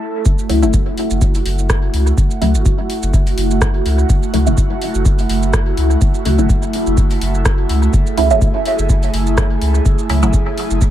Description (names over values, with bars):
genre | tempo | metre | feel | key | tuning
dub techno | 125 BPM | 4/4 | swing 55% on 16ths | F# minor | A4 = 440 Hz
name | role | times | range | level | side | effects
airy breathy pad | sustained chords | 0.0-10.9 s | A3 to A4 | -20 LUFS | right 2 dB | chorus, phaser, sidechain pumping
warm sub bass | bass | 0.3-10.9 s | F#1 to C#2 | -17 LUFS | equal | sidechain pumping
deep house drum kit | drums | 0.3-10.9 s | hi-hat, rim click, shaker | -25 LUFS | right 1 dB | dub echo
electronic kick drum | drums | 0.3-10.9 s | none | -15 LUFS | equal | none
filtered dub chord stab | stabs | 0.5-10.5 s | C#3 to E4 | -19 LUFS | equal | phaser, sidechain pumping, dub echo
room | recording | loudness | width
light reverb | echo-heavy mix | -13 LUFS | side -12 dB against mid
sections
0.3-10.9 A section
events
break 0.0; filter sweep on synth stab 0.3-10.9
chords
0.3 F#m7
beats
| 0.26 0.74 1.22 1.70 | 2.18 2.66 3.14 3.62 | 4.10 4.58 5.06 5.54 | 6.02 6.50 6.98 7.46 | 7.94 8.42 8.90 9.38 | 9.86 10.34 10.82